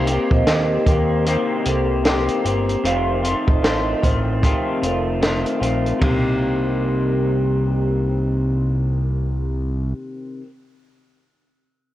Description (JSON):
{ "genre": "indie pop, bedroom pop", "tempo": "76 BPM", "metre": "4/4", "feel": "swing 60% on 16ths", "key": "C dorian", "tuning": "A4 = 440 Hz", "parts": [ { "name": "electric guitar through a small old amp", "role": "accompaniment", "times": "0.0-10.5 s", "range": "F2 to G4", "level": "-21 LUFS", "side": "left 2 dB", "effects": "lush chorus, warbly pitch drift" }, { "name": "fat analog bass", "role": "bass", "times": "0.0-9.9 s", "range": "F1 to Eb2", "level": "-22 LUFS", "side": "equal", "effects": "tube saturation" }, { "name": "compact cocktail drum kit", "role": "drums", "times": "0.1-6.2 s", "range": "hi-hat, kick drum, ride cymbal, snare drum, toms", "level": "-21 LUFS", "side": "equal", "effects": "none" }, { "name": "vibraphone with medium hard mallets", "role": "second line", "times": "0.3-8.4 s", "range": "G4 to F5", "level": "-28 LUFS", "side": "right 5 dB", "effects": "wide subtle chorus, analog delay" } ], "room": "light reverb, studio ambience", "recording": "worn, warbling old tape, cassette tape, warbly pitch drift", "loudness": "-17 LUFS", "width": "side -14 dB against mid", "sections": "0.0-6.0 A section; 6.0-9.2 B section", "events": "none", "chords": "0.0 Cm7; 2.8 F7; 6.0 Cm7" }